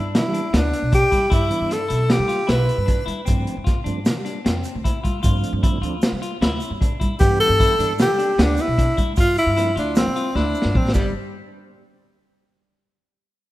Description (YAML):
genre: progressive instrumental, band music in an uneven meter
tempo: 153 BPM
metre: 5/4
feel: straight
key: G mixolydian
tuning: A4 = 441 Hz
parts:
  - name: warm tenor saxophone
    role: melody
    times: 0.0-3.1, 7.2-11.1 s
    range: G3 to B4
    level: -20 LUFS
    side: equal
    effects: none
  - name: mellow tonewheel organ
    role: accompaniment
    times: 0.0-11.1 s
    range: D3 to D4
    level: -31 LUFS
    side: right 5 dB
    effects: chorus vibrato, slow rotary speaker
  - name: clean electric guitar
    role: arpeggios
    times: 0.0-11.1 s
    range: G3 to F4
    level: -30 LUFS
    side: left 5 dB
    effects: spring reverb
  - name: upright bass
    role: bass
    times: 0.0-11.1 s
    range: G1 to G3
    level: -24 LUFS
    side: equal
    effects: none
  - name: crunchy breakbeat drum kit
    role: drums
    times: 0.1-11.0 s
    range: crash cymbal, hi-hat, kick drum, snare drum, toms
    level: -21 LUFS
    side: equal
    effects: none
  - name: egg shaker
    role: percussion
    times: 3.3-11.1 s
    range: none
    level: -44 LUFS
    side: right 7 dB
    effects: none
room: light reverb, studio ambience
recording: rough home demo mix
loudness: -17 LUFS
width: side -16 dB against mid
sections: 0.0-11.1 A section; 11.1-13.1 B section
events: drum fill 10.4-11.1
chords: 0.0 Em7; 3.3 G7sus4; 7.2 Em7/G; 9.2 G7sus4; 10.9 G; 11.1 N.C.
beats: 0.14 0.53 0.92 | 1.31 1.71 2.10 2.49 2.88 | 3.27 3.67 4.06 4.45 4.84 | 5.24 5.63 6.03 6.42 6.81 | 7.21 7.60 7.99 8.39 8.78 | 9.18 9.57 9.96 10.36 10.75